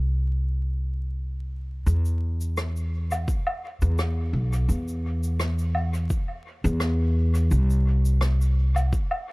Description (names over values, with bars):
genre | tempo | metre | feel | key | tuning
ambient dub | 85 BPM | 4/4 | swing 54% on 16ths | unclear | A4 = 440 Hz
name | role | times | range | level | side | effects
upright bass | bass | 0.0-8.9 s | B1 to E2 | -22 LUFS | equal | none
cabasa, rim click and woodblock | drums | 1.9-9.2 s | none | -32 LUFS | equal | dub echo
electronic kick drum | drums | 3.3-9.1 s | none | -25 LUFS | equal | none
room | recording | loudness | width
little or no reverb | dark, warm production, vinyl crackle | -22 LUFS | side -24 dB against mid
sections
0.0-1.9 A section; 1.9-9.3 B section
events
none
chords
none